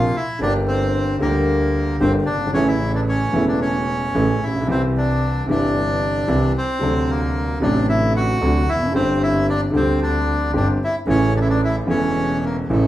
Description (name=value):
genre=tango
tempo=112 BPM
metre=4/4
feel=rubato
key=unclear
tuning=A4 = 440 Hz
part: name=bandoneon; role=melody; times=0.0-12.9 s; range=A3 to F#4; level=-23 LUFS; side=equal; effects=none
part: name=warm concert grand piano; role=accompaniment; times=0.0-12.9 s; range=E1 to A4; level=-20 LUFS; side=equal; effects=none
part: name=rich double bass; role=bass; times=0.0-12.9 s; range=E1 to D2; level=-23 LUFS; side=right 1 dB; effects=none
room=wet large studio reverb, RT60 0.8 s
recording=band playing live in one room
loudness=-17 LUFS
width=side -14 dB against mid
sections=0.0-12.9 A section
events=none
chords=0.4 Gm; 2.5 A; 4.7 C; 6.8 D7; 8.9 Gsus4; 11.1 A